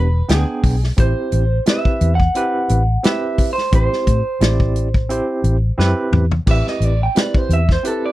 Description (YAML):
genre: straight-eighth soul blues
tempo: 87 BPM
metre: 4/4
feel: swing 54% on 16ths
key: A dorian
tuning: A4 = 440 Hz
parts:
  - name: electric guitar through a small old amp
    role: melody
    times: 0.0-8.1 s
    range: G#4 to G5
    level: -22 LUFS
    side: right 2 dB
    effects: none
  - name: barky tine electric piano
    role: accompaniment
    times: 0.0-8.1 s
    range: B3 to G5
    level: -22 LUFS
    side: right 2 dB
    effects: overdrive, fast tremolo
  - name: vintage muted fingered electric bass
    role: bass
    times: 0.0-7.8 s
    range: E1 to A2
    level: -16 LUFS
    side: equal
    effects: none
  - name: warm soul drum kit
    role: drums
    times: 0.3-8.0 s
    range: crash cymbal, hi-hat, kick drum, snare drum, toms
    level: -18 LUFS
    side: equal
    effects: none
room: little or no reverb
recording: none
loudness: -14 LUFS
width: side -16 dB against mid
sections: 0.0-6.5 A section; 6.5-8.1 B section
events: drum fill 5.8-6.5; clean electric guitar solo 6.5-8.1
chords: 0.0 E7#9; 1.0 Am7